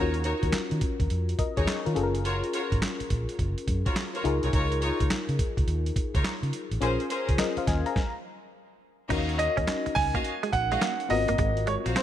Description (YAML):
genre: R&B, new jack swing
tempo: 105 BPM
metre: 4/4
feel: swing 64% on 16ths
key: unclear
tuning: A4 = 441 Hz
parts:
  - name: FM electric piano with tremolo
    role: accompaniment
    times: 0.0-12.0 s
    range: Cb4 to Bb5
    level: -32 LUFS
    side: left 5 dB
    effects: none
  - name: clear studio string section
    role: stabs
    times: 0.0-12.0 s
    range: Db4 to F5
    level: -34 LUFS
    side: equal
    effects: ping-pong delay
  - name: vintage muted fingered electric bass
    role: bass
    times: 0.0-11.9 s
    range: Gb1 to Eb3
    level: -29 LUFS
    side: equal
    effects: none
  - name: boom bap sampler-style drum kit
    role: drums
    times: 0.1-12.0 s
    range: crash cymbal, handclaps, hi-hat, kick drum, snare drum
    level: -30 LUFS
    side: right 1 dB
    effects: none
  - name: direct-recorded clean electric guitar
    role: riff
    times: 9.1-12.0 s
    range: Ab3 to Eb4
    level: -34 LUFS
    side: right 5 dB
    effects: analog chorus
  - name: clear baby grand piano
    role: melody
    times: 9.4-12.0 s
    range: C5 to Ab5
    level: -27 LUFS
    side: right 2 dB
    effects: none
room: light reverb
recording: none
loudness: -25 LUFS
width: side -11 dB against mid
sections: 0.0-9.1 A section; 9.1-12.0 B section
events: stop 8.0-9.1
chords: 0.0 Ebm7; 2.0 Gbmaj7; 4.2 Db69; 6.8 Bbm9; 8.0 N.C.; 9.1 Ebm9; 11.1 Ab13